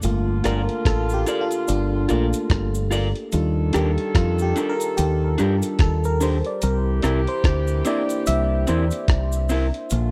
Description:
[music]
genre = lovers rock reggae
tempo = 73 BPM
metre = 4/4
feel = swing 59% on 16ths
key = G minor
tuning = A4 = 438 Hz
[part]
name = clear horn section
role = second line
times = 0.0-10.1 s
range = D3 to A4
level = -32 LUFS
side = equal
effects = none
[part]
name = FM electric piano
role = accompaniment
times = 0.0-9.9 s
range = G3 to E5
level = -28 LUFS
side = equal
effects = chorus, tape echo
[part]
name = deep dub fingered electric bass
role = bass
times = 0.0-10.1 s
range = G1 to G2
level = -24 LUFS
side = equal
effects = none
[part]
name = dusty soul sampler-style drum kit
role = drums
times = 0.0-10.1 s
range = hi-hat, kick drum, rim click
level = -24 LUFS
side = equal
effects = none
[part]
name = cabasa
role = percussion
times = 0.0-10.1 s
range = none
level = -39 LUFS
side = equal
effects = none
[part]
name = electric guitar through a small old amp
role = stabs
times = 0.4-9.7 s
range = C4 to D5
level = -28 LUFS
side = equal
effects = none
[sound]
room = digital ambience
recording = dry, close 1970s-style studio recording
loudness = -21 LUFS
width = mono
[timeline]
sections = 0.0-10.1 A section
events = FM electric piano solo 0.0-10.1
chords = 0.0 Gm7; 3.3 Ebmaj7; 6.6 C7

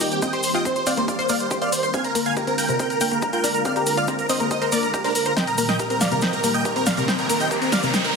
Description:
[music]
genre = uplifting trance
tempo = 140 BPM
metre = 4/4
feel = straight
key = C minor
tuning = A4 = 440 Hz
[part]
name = big supersaw lead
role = melody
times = 0.0-8.1 s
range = D4 to Ab5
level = -24 LUFS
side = right 2 dB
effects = phaser, sidechain pumping, dub echo
[part]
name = plucky unison lead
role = second line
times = 0.0-8.1 s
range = G5 to Ab6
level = -29 LUFS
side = equal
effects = ensemble chorus, sidechain pumping, dub echo
[part]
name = analog string pad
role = sustained chords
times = 0.0-8.2 s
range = Bb2 to Bb4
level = -28 LUFS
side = equal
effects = ensemble chorus, vintage 12-bit sampler grit, sidechain pumping
[part]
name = analog pluck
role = arpeggios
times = 0.0-8.0 s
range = C3 to C5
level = -26 LUFS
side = left 3 dB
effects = wide subtle chorus, sidechain pumping, dub echo
[part]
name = punchy analog drum machine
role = drums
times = 0.0-8.1 s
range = hi-hat, snare drum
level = -26 LUFS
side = right 1 dB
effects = overdrive
[part]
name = cabasa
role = percussion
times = 0.0-8.1 s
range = none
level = -31 LUFS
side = left 3 dB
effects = none
[part]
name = electronic kick drum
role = drums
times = 0.2-8.0 s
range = none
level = -31 LUFS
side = equal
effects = high-pass filter on kick, high-pass filter on room
[part]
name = riser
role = sound effects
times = 6.3-8.2 s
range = none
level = -29 LUFS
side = right 1 dB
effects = none
[sound]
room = moderate lush hall reverb, RT60 1.9 s, digital ambience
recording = heavily compressed radio sound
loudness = -19 LUFS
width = side -4 dB against mid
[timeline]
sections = 0.0-8.2 A section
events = build-up 0.0-8.2; drum fill 5.4-8.2; riser 6.3-8.2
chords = 0.0 Cm7; 1.9 Bb7; 5.4 Eb/Bb; 7.1 Cm7

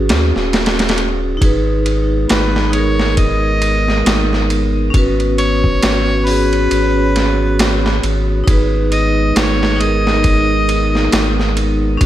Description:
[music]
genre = trip hop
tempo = 68 BPM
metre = 4/4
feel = swing 58% on 16ths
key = G# minor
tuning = A4 = 440 Hz
[part]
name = vibraphone with hard mallets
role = accompaniment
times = 0.0-12.1 s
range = C#4 to B4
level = -19 LUFS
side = right 1 dB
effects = harmonic tremolo, tape echo
[part]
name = warm sub bass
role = bass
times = 0.0-12.1 s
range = D#1 to D#2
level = -17 LUFS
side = equal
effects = none
[part]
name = boom bap sampler-style drum kit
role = drums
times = 0.1-12.1 s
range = hi-hat, kick drum, ride cymbal, snare drum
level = -18 LUFS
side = equal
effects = none
[part]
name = dark analog pad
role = sustained chords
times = 2.0-12.1 s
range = G#3 to C#5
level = -22 LUFS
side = left 1 dB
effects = chorus
[part]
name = mellow harmonica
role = melody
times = 2.3-11.6 s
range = B4 to D#5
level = -20 LUFS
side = left 1 dB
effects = tape echo
[sound]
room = little or no reverb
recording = none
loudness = -12 LUFS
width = side -12 dB against mid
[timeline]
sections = 0.0-12.1 A section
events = none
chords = 0.0 Bsus2; 1.4 G#m; 4.9 Bsus2/G#; 8.5 G#m

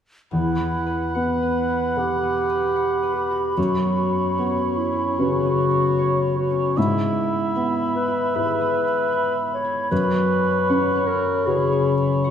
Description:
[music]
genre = cinematic, emotional film score for orchestra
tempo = 76 BPM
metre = 4/4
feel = rubato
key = unclear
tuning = A4 = 439 Hz
[part]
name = dark clarinet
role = second line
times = 0.3-12.3 s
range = E4 to C#5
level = -24 LUFS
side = left 1 dB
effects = none
[part]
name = mellow cor anglais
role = second line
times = 0.3-12.3 s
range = C#5 to F#5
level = -27 LUFS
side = right 4 dB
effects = none
[part]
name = mellow wooden flute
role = second line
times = 0.3-12.3 s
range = B5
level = -28 LUFS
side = equal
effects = none
[part]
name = warm baby grand piano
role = accompaniment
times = 0.3-12.3 s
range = E2 to F#5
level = -25 LUFS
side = right 1 dB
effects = none
[part]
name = concert harp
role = arpeggios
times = 0.3-12.3 s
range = E2 to F#5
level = -27 LUFS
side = left 5 dB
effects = none
[sound]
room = wet scoring stage reverb, RT60 1.6 s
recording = none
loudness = -19 LUFS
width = side -8 dB against mid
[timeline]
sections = 0.3-12.3 A section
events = none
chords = 0.3 Emadd9; 3.6 Bsus2/F#; 6.8 E/G#; 9.9 Bsus2/F#

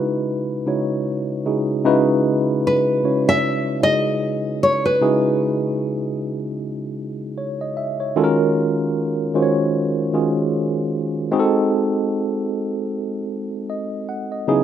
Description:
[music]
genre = R&B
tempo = 76 BPM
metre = 4/4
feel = swing 58% on 16ths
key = unclear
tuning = A4 = 440 Hz
[part]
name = nylon-string guitar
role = melody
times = 0.0-6.4 s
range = B4 to E5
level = -19 LUFS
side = equal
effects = slapback echo
[part]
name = tine electric piano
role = accompaniment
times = 0.0-14.6 s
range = C#3 to F#5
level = -19 LUFS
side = right 1 dB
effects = medium stereo tremolo
[sound]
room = light reverb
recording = rough home demo mix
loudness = -18 LUFS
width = side -10 dB against mid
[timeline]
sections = 0.0-1.8 A section; 1.8-14.5 B section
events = none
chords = 0.0 C#m11; 8.2 D#m11; 11.3 G#7b9

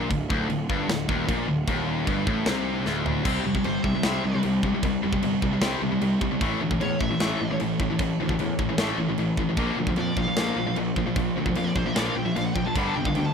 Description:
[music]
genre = heavy metal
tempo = 152 BPM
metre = 4/4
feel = straight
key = unclear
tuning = A4 = 440 Hz
[part]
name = clear symphonic string section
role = sustained chords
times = 0.0-13.3 s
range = C3 to D5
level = -40 LUFS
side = equal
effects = none
[part]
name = scooped high-gain guitar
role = riff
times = 0.0-13.3 s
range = D2 to C4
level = -29 LUFS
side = right 12 dB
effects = distortion
[part]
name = tight distorted guitar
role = riff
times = 0.0-13.3 s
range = D2 to C4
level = -27 LUFS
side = left 10 dB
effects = distortion
[part]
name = fuzz picked electric bass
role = bass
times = 0.0-13.3 s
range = D1 to F2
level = -31 LUFS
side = equal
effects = overdrive
[part]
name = tight metal drum kit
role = drums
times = 0.1-13.2 s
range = crash cymbal, kick drum, snare drum, toms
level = -29 LUFS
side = right 1 dB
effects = none
[part]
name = high-gain lead guitar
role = melody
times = 3.7-4.4, 6.8-7.6, 10.0-13.3 s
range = C5 to B5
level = -33 LUFS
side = right 1 dB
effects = distortion
[sound]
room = little or no reverb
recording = rough home demo mix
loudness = -22 LUFS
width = side -6 dB against mid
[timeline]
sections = 0.0-3.3 A section; 3.3-13.3 B section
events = drum fill 2.9-3.3; lead electric guitar solo 3.3-13.3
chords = 0.0 Dm; 3.3 C; 6.4 A; 9.6 Bb; 12.8 G

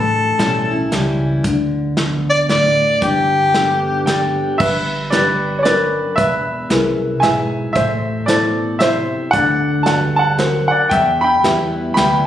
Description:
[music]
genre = honky-tonk and classic country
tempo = 114 BPM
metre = 3/4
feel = swing 60% on 8ths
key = G major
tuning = A4 = 439 Hz
[part]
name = mellow harmonica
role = melody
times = 0.0-4.4 s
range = G4 to D5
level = -15 LUFS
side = left 1 dB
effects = none
[part]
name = picked steel-string acoustic guitar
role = accompaniment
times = 0.0-12.3 s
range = E2 to G4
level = -22 LUFS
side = left 3 dB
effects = none
[part]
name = upright bass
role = bass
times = 0.0-12.3 s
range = E1 to E2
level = -22 LUFS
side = right 1 dB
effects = none
[part]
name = natural country drum kit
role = drums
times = 0.4-12.1 s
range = crash cymbal, hi-hat, kick drum, snare drum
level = -22 LUFS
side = equal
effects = none
[part]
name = bright upright piano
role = second line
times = 4.1-12.3 s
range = A4 to B5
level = -16 LUFS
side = right 1 dB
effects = none
[part]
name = dark upright piano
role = accompaniment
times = 5.1-12.3 s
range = D4 to E5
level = -22 LUFS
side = equal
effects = none
[sound]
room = moderate large studio reverb, RT60 1.3 s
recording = recorded on a phone in the room, studio reverb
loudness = -14 LUFS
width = side -11 dB against mid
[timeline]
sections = 0.0-4.6 A section; 4.6-12.3 B section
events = upright piano solo 4.6-12.3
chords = 0.0 A7; 1.4 D5; 3.0 G; 6.2 E; 7.8 Am; 9.3 D; 10.9 Em

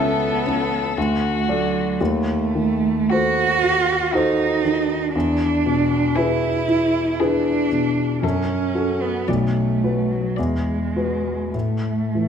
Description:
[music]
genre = classical, slow romantic movement for piano trio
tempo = 50-59 BPM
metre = 3/4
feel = rubato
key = unclear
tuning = A4 = 440 Hz
[part]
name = warm violin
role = melody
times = 0.0-11.3 s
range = F#4 to D5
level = -28 LUFS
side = left 8 dB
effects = none
[part]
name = rich cello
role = second line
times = 0.0-12.3 s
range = F#3 to F#4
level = -21 LUFS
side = right 3 dB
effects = none
[part]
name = warm grand piano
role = accompaniment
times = 0.0-12.3 s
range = B1 to E5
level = -21 LUFS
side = left 2 dB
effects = none
[sound]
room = wet scoring stage reverb, RT60 1.8 s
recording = minimal, uncompressed stereo recording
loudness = -18 LUFS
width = side -8 dB against mid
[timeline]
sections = 0.0-12.3 A section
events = none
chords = 0.0 A/C#; 1.0 D; 2.0 D#dim7; 5.1 E7; 8.2 F#m; 9.3 Bm7; 10.4 E9; 11.5 A5

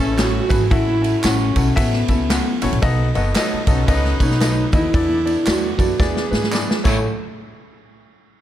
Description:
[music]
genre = uptempo 1960s-style soul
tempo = 114 BPM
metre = 4/4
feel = swing 61% on 8ths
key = unclear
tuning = A4 = 440 Hz
[part]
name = vibraphone with soft mallets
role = melody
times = 0.0-7.0 s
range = B3 to A4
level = -22 LUFS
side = equal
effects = none
[part]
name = warm horn section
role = second line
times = 0.0-7.0 s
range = C#3 to B4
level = -29 LUFS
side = right 2 dB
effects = none
[part]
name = warm viola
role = second line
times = 0.0-7.0 s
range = A3 to G#4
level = -30 LUFS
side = right 5 dB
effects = none
[part]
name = clear concert grand piano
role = accompaniment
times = 0.0-7.0 s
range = A1 to F#5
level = -24 LUFS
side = left 4 dB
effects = none
[part]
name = upright bass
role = bass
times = 0.0-7.0 s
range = F#1 to G#2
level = -21 LUFS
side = equal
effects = none
[part]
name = swinging big-band drum kit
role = drums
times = 0.2-7.0 s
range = crash cymbal, kick drum, ride cymbal, snare drum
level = -20 LUFS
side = equal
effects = none
[part]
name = congas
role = percussion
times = 0.2-7.0 s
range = none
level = -34 LUFS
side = right 6 dB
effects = none
[part]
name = handclaps and tambourine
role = percussion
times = 0.2-7.0 s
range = none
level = -31 LUFS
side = right 3 dB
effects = none
[sound]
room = little or no reverb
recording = dark, warm production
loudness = -15 LUFS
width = side -12 dB against mid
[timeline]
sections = 0.0-7.1 A section; 7.1-8.4 B section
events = drum fill 6.0-7.1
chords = 0.0 Amaj7; 0.7 F#m7/A; 2.8 B7; 4.9 E7sus4; 6.0 E7; 6.8 Amaj7; 7.1 N.C.

